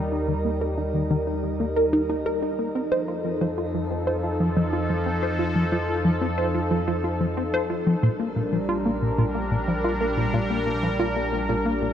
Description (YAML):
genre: ambient, sequencer-driven space music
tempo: 91 BPM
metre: 4/4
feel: straight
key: unclear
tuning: A4 = 436 Hz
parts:
  - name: sweeping resonant pad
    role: sustained chords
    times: 0.0-11.9 s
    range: F3 to Bb4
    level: -26 LUFS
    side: equal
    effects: chorus, shimmer reverb
  - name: fat analog bass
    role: bass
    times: 0.0-11.9 s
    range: Bb1 to F2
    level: -31 LUFS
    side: equal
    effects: none
  - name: tight sequenced synth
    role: riff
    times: 0.1-11.9 s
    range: Bb2 to C5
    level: -25 LUFS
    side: equal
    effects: chorus, phaser, tape echo
room: wet huge ambient reverb, RT60 8.2 s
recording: none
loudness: -22 LUFS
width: side -9 dB against mid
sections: 0.0-11.9 A section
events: none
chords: 0.0 Eb; 2.8 F7; 8.0 Bb6